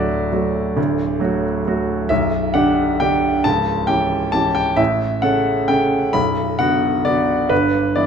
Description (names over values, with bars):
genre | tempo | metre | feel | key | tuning
classical, piano waltz | 133 BPM | 3/4 | rubato | D major | A4 = 440 Hz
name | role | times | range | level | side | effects
clear grand piano | solo | 0.0-8.1 s | B0 to B5 | -16 LUFS | equal | none
room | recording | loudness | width
moderate recital hall reverb, RT60 1.4 s | none | -16 LUFS | side -7 dB against mid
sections
0.0-8.1 A section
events
none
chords
0.0 D; 2.1 G/B; 3.4 C#dim; 4.8 F#m/A; 6.2 Bm; 7.5 Em/G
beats
0.33 | 0.77 1.21 1.66 | 2.10 2.54 3.00 | 3.44 3.87 4.33 | 4.79 5.24 5.70 | 6.15 6.60 7.06 | 7.51 7.96